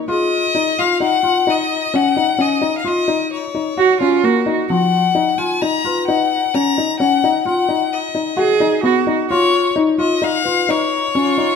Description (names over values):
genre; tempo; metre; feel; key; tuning
contemporary instrumental, chamber music in an uneven meter; 130 BPM; 5/4; straight; unclear; A4 = 445 Hz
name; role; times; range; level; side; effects
felt-muted upright piano; arpeggios; 0.0-11.6 s; F3 to Gb4; -18 LUFS; left 3 dB; none
clear violin; melody; 0.1-11.6 s; Db5 to Bb5; -18 LUFS; left 6 dB; none
worn celesta; texture; 0.1-0.6, 5.9-6.3, 9.8-10.9 s; Eb4 to Cb5; -24 LUFS; left 3 dB; none
rich cello; second line; 3.8-4.6, 8.4-11.6 s; F4 to Ab4; -17 LUFS; right 8 dB; none
room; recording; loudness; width
moderate scoring stage reverb, RT60 1.4 s; none; -14 LUFS; side -6 dB against mid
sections
0.0-11.6 A section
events
none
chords
0.1 Gb5; 4.7 Abm7 (rootless); 9.3 Db7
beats
| 0.09 0.55 1.01 1.47 1.93 | 2.39 2.85 3.31 3.77 4.23 | 4.70 5.16 5.62 6.08 6.54 | 7.00 7.46 7.92 8.38 8.85 | 9.31 9.77 10.23 10.69 11.15